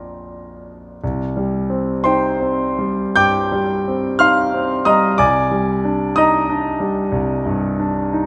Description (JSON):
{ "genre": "classical, impressionist solo piano", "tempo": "51-63 BPM", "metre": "4/4", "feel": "rubato", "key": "C minor", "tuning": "A4 = 440 Hz", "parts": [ { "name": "clear concert grand piano", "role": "solo", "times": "0.0-8.3 s", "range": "Bb1 to Bb6", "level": "-18 LUFS", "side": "equal", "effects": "none" } ], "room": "moderate recital hall reverb, RT60 1.6 s", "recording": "none", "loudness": "-18 LUFS", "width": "mono", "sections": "0.0-1.0 A section; 1.0-8.3 A section", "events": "none", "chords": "0.0 Bbadd9; 1.0 Cm; 5.2 Ebmaj7/C" }